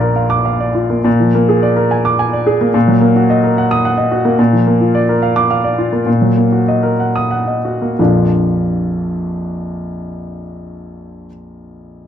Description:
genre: classical, virtuoso piano study.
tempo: 58-74 BPM (dotted quarters).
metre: 6/8.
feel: rubato.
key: Bb major.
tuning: A4 = 440 Hz.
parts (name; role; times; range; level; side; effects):
warm baby grand piano; solo; 0.0-12.1 s; Bb1 to Eb6; -12 LUFS; equal; none.
room: little or no reverb.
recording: dark, warm production.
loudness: -11 LUFS.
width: side -9 dB against mid.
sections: 0.0-1.1 A section; 1.1-8.0 B section; 8.0-11.9 C section.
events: slowing down 3.6-8.0.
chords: 0.0 Bb; 1.1 Bb7; 2.7 Ebm/Bb; 4.4 Bb; 6.1 Ebm/Bb; 8.0 Bb.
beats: 0.17 | 1.06 1.92 | 2.75 3.57 | 4.38 5.22 | 6.07 6.99 | 7.99 8.96 | 9.94 10.90.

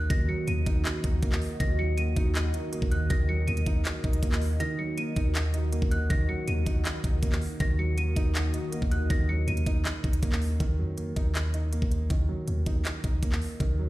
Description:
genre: hip hop, trap.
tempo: 160 BPM.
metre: 4/4.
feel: half-time.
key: Eb minor.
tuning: A4 = 440 Hz.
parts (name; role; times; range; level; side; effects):
worn celesta; melody; 0.0-10.6 s; Gb6 to Eb7; -37 LUFS; equal; ping-pong delay.
warm grand piano; accompaniment; 0.0-13.9 s; Eb3 to Eb5; -34 LUFS; right 2 dB; none.
dark analog pad; sustained chords; 0.0-10.6 s; Eb3 to Eb5; -36 LUFS; left 1 dB; chorus, phaser.
long sustained 808-style bass; bass; 0.0-13.9 s; Eb2 to F2; -28 LUFS; equal; none.
trap drum kit; drums; 0.1-13.7 s; handclaps, hi-hat, kick drum; -28 LUFS; equal; none.
room: digital ambience.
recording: played on a big sound system in a bare room, stone room reverb.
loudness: -25 LUFS.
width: side -17 dB against mid.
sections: 0.0-10.6 A section; 10.6-13.9 B section.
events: break 4.6-5.0.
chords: 0.0 Ebm.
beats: | 0.10 0.48 0.85 1.23 | 1.60 1.98 2.35 2.73 | 3.10 3.48 3.85 4.23 | 4.60 4.98 5.35 5.73 | 6.10 6.48 6.85 7.23 | 7.60 7.98 8.35 8.73 | 9.10 9.48 9.85 10.23 | 10.60 10.98 11.35 11.73 | 12.10 12.48 12.85 13.23 | 13.60.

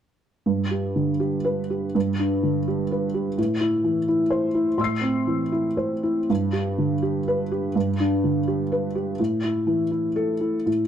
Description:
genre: neoclassical minimalist piano.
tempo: 111-129 BPM.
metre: 3/4.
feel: rubato.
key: unclear.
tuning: A4 = 440 Hz.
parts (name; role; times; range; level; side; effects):
felt-muted upright piano; solo; 0.5-10.9 s; G2 to C7; -21 LUFS; equal; none.
room: light reverb.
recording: dark, warm production.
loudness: -21 LUFS.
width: side -9 dB against mid.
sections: 0.5-6.3 A section; 6.3-10.9 B section.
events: none.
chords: 0.5 G; 3.4 Am; 6.3 G; 9.2 A5.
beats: | 0.46 0.96 1.46 | 1.95 2.43 2.91 | 3.37 3.85 4.31 | 4.79 5.27 5.77 | 6.29 6.79 7.27 | 7.75 8.23 8.71 | 9.19 9.67 10.16 | 10.67.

